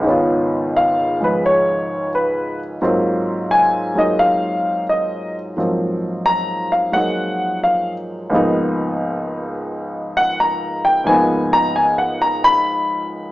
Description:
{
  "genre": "solo jazz",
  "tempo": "87 BPM",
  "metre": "4/4",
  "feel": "swing 68% on 8ths",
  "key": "unclear",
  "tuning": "A4 = 440 Hz",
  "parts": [
    { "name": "warm baby grand piano", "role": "solo", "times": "0.0-13.3 s", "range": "Db2 to Cb6", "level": "-16 LUFS", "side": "equal", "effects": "none" }
  ],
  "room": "wet large studio reverb, RT60 0.9 s",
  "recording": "band playing live in one room, small speaker sound",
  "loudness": "-16 LUFS",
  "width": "side -16 dB against mid",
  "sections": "0.0-13.3 A section",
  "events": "grand piano solo 0.0-13.3",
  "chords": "0.0 Db9; 2.8 Ab13; 8.3 Db13"
}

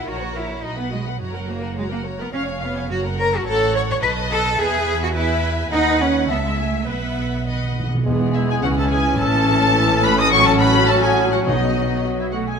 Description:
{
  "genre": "quick classical-period movement for symphony orchestra",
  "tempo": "106 BPM",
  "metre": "2/4",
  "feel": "straight",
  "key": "E major from 3.5 s",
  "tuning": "A4 = 440 Hz",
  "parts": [
    { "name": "dark studio violin section", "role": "melody", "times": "0.0-12.6 s", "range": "D#5 to D#6", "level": "-24 LUFS", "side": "left 3 dB", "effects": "none" },
    { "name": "warm chamber violin section", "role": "second line", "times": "0.0-12.4 s", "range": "E4 to F#5", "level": "-28 LUFS", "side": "left 4 dB", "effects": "none" },
    { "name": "rich chamber viola section", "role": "accompaniment", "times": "0.0-12.6 s", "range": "E3 to E#5", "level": "-28 LUFS", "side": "right 2 dB", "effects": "none" },
    { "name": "rich chamber double bass section", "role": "bass", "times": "0.0-12.4 s", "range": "E1 to E2", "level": "-25 LUFS", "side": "right 3 dB", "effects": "none" },
    { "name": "rich studio cello section", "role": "bass", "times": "0.0-12.4 s", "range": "C#2 to C#5", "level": "-23 LUFS", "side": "right 1 dB", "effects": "none" },
    { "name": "timpani", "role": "percussion", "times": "7.5-8.6, 11.5-12.3 s", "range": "E2 to B2", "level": "-25 LUFS", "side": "right 2 dB", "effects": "none" },
    { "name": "clear clarinet", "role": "second line", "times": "8.1-12.3 s", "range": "B3 to C#4", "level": "-26 LUFS", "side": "left 2 dB", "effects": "none" },
    { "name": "mellow bassoon", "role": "accompaniment", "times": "8.1-12.3 s", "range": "E3 to G#3", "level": "-24 LUFS", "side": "right 1 dB", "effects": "none" },
    { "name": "mellow French horn section", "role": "sustained chords", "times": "8.1-12.3 s", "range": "E3 to C#4", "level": "-24 LUFS", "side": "left 6 dB", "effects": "none" },
    { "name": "flute section", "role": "second line", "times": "8.3-12.6 s", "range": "D#5 to D#6", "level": "-26 LUFS", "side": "equal", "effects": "none" },
    { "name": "warm oboe", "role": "second line", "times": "8.4-12.6 s", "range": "D#4 to D#5", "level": "-26 LUFS", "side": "right 1 dB", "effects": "none" }
  ],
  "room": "moderate scoring stage reverb, RT60 1.9 s",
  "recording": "none",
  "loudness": "-17 LUFS",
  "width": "side -6 dB against mid",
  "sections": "0.0-8.1 A section; 8.1-12.6 B section",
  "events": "timpani fill 7.5-8.1",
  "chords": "0.1 F#/A#; 0.6 B; 1.2 F#; 2.3 C#/E#; 2.9 F#; 3.5 F#m/A; 4.0 B7; 4.6 E; 5.7 B/D#; 6.3 A/C#; 6.9 Bsus4; 8.1 E; 8.6 C#m; 9.2 A; 10.3 F#m/A; 11.5 B"
}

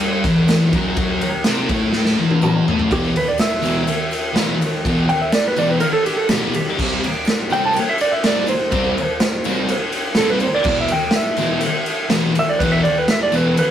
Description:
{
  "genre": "garage rock duo or trio",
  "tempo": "124 BPM",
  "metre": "4/4",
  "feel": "straight",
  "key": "E minor",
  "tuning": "A4 = 440 Hz",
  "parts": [
    { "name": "thick fuzz guitar", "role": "riff", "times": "0.0-13.5 s", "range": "E2 to C4", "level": "-19 LUFS", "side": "left 1 dB", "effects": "distortion" },
    { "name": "raw garage drum kit", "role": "drums", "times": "0.0-13.7 s", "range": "crash cymbal, kick drum, ride cymbal, snare drum, toms", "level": "-19 LUFS", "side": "equal", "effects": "none" },
    { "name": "tambourine", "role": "percussion", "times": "0.5-13.7 s", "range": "none", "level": "-39 LUFS", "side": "left 4 dB", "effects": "none" },
    { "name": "clean lap steel guitar", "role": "melody", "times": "2.9-13.7 s", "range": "G4 to A5", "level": "-20 LUFS", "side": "right 2 dB", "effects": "none" }
  ],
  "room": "wet small room reverb, RT60 0.5 s",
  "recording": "rough rehearsal-room recording, warm saturation",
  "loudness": "-15 LUFS",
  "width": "side -10 dB against mid",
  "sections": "0.0-2.9 A section; 2.9-13.7 B section",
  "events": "drum fill 1.9-2.9; electric slide guitar solo 2.9-13.7",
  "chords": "0.0 Em; 2.9 E5; 6.8 C5; 10.7 E5"
}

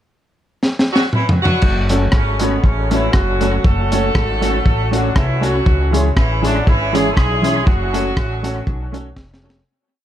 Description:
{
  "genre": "ska",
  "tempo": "119 BPM",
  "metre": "4/4",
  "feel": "swing 55% on 8ths",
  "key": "F# minor",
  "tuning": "A4 = 442 Hz",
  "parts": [
    { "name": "crunchy breakbeat drum kit", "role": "drums", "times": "0.6-9.6 s", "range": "crash cymbal, hi-hat, kick drum, rim click, snare drum, toms", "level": "-17 LUFS", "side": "equal", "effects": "none" },
    { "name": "warm horn section", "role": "melody", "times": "0.9-9.2 s", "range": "C#3 to A4", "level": "-20 LUFS", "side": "right 1 dB", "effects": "dub echo, plate reverb" },
    { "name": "upright bass", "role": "bass", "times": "1.6-9.6 s", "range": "E#1 to C#2", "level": "-20 LUFS", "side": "equal", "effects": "none" },
    { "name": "mellow electric guitar", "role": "accompaniment", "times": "1.9-9.6 s", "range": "E3 to F#4", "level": "-22 LUFS", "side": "right 3 dB", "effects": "ensemble chorus" },
    { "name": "bright upright piano", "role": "stabs", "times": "1.9-9.6 s", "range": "C#4 to C#5", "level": "-24 LUFS", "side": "left 4 dB", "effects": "dub echo" }
  ],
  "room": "moderate studio reverb, RT60 0.6 s",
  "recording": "none",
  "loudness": "-14 LUFS",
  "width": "side -11 dB against mid",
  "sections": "0.0-1.6 pickup bar; 1.6-9.7 A section",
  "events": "drum fill 0.6-1.6, 9.2-9.7; fade-out 7.7-9.7",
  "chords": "0.0 N.C.; 1.6 F#m; 5.7 C#m; 7.7 F#m"
}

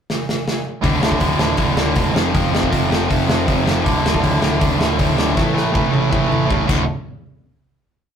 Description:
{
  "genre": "punk rock",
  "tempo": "159 BPM",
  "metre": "4/4",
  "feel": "straight",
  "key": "unclear",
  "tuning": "A4 = 440 Hz",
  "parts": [
    { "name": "big rock drum kit", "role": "drums", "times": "0.1-6.8 s", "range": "crash cymbal, hi-hat, kick drum, snare drum, toms", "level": "-19 LUFS", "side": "right 1 dB", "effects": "none" },
    { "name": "cranked stack guitar", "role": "riff", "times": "0.8-6.8 s", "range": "D2 to A3", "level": "-21 LUFS", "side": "left 7 dB", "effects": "overdrive" },
    { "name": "distorted electric guitar", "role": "riff", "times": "0.8-6.8 s", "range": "D2 to F#4", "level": "-21 LUFS", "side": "right 6 dB", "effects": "overdrive" },
    { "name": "fuzz picked electric bass", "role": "bass", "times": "0.8-6.9 s", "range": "D1 to A1", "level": "-23 LUFS", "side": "left 1 dB", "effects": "overdrive" }
  ],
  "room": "light reverb",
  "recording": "rough rehearsal-room recording, tube saturation",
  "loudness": "-15 LUFS",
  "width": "side -8 dB against mid",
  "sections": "0.0-0.8 pickup bar; 0.8-6.9 verse; 6.9-8.2 final hit",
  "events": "drum fill 0.1-0.8, 5.4-6.9",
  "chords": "0.0 N.C.; 0.8 D5; 2.1 F5; 3.8 D5; 5.4 A5; 6.7 D; 6.9 N.C."
}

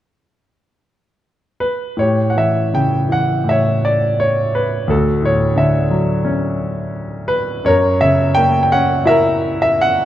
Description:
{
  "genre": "classical, lyrical solo piano",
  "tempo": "78-88 BPM",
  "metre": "4/4",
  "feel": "rubato",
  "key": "unclear",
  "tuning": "A4 = 440 Hz",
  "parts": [
    { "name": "clear grand piano", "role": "solo", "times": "1.6-10.1 s", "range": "D2 to G5", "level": "-14 LUFS", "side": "equal", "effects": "none" }
  ],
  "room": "moderate concert hall reverb, RT60 2.3 s",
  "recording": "dark, warm production",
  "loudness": "-14 LUFS",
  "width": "side -12 dB against mid",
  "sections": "0.0-2.0 A section; 2.0-10.1 B section",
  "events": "none",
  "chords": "0.0 N.C.; 2.0 A7; 4.9 Dmaj9; 7.7 F#7"
}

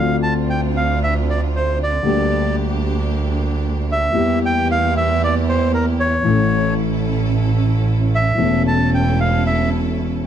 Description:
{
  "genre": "tango",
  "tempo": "114 BPM",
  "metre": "4/4",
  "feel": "rubato",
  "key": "unclear",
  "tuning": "A4 = 440 Hz",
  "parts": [
    { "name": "bandoneon", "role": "melody", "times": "0.0-9.7 s", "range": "Bb4 to A5", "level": "-20 LUFS", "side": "right 1 dB", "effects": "plate reverb" },
    { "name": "warm concert grand piano", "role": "accompaniment", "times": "0.0-10.3 s", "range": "E1 to A4", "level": "-20 LUFS", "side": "left 5 dB", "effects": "none" },
    { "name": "bright studio string section", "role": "stabs", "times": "0.0-10.3 s", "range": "Bb3 to A4", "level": "-26 LUFS", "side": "right 3 dB", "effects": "none" },
    { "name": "clear double bass", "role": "bass", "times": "0.0-10.3 s", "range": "E1 to E2", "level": "-20 LUFS", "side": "right 3 dB", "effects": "none" }
  ],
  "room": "light reverb",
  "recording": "dark, warm production",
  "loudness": "-16 LUFS",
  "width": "side -9 dB against mid",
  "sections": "0.0-10.3 A section",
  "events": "none",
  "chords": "0.0 Dm7; 2.0 Gm/D; 4.2 Edim; 6.2 A"
}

